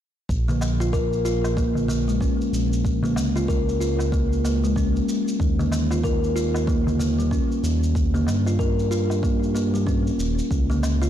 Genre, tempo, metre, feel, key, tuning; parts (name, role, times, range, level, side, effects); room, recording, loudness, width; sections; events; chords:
organic downtempo; 94 BPM; 4/4; swing 60% on 16ths; Bb dorian; A4 = 440 Hz
smooth synth bass; bass; 0.3-11.1 s; Eb1 to G2; -23 LUFS; equal; tube saturation, sidechain pumping
cabasa; drums; 0.3-11.1 s; -38 LUFS; equal
electronic kick drum; drums; 0.3-10.7 s; -25 LUFS; equal
kalimba; arpeggios; 0.5-11.1 s; G3 to Bb4; -24 LUFS; left 1 dB; vintage 12-bit sampler grit, ping-pong delay
darbuka; percussion; 0.5-11.1 s; -33 LUFS; left 3 dB
light reverb; blown-out, overdriven recording, overdrive; -20 LUFS; side -11 dB against mid
0.3-11.1 A section
0.3 Bbm; 5.4 Eb; 10.5 Db